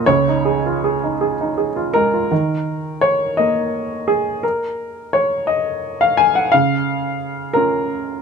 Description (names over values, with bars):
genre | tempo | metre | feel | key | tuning
neoclassical minimalist piano | 53-60 BPM (dotted quarters) | 6/8 | rubato | unclear | A4 = 440 Hz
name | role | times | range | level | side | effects
warm upright piano | solo | 0.0-8.2 s | Db2 to Ab5 | -16 LUFS | equal | none
room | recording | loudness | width
little or no reverb | close, detailed microphones | -16 LUFS | side -5 dB against mid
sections
0.0-2.3 A section; 2.3-8.2 B section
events
none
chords
0.1 Dbadd9; 2.3 Eb5; 6.5 Bbm/Db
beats
| 0.06 1.19 | 2.31 3.38 | 4.43 5.48 | 6.52 7.55